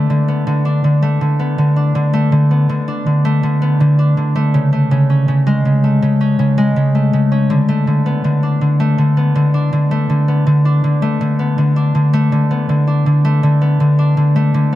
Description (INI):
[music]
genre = folktronica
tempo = 81 BPM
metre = 4/4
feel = straight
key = unclear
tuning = A4 = 440 Hz
[part]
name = concert harp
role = solo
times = 0.0-14.8 s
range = C#3 to D4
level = -12 LUFS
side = equal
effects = none
[sound]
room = little or no reverb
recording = none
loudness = -12 LUFS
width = side -14 dB against mid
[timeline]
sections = 0.0-14.8 A section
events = none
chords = 0.0 D5; 4.5 Amaj7; 7.5 D5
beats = 0.10 0.84 | 1.58 2.32 3.06 3.80 | 4.54 5.28 6.02 6.76 | 7.51 8.25 8.99 9.73 | 10.47 11.21 11.95 12.69 | 13.43 14.17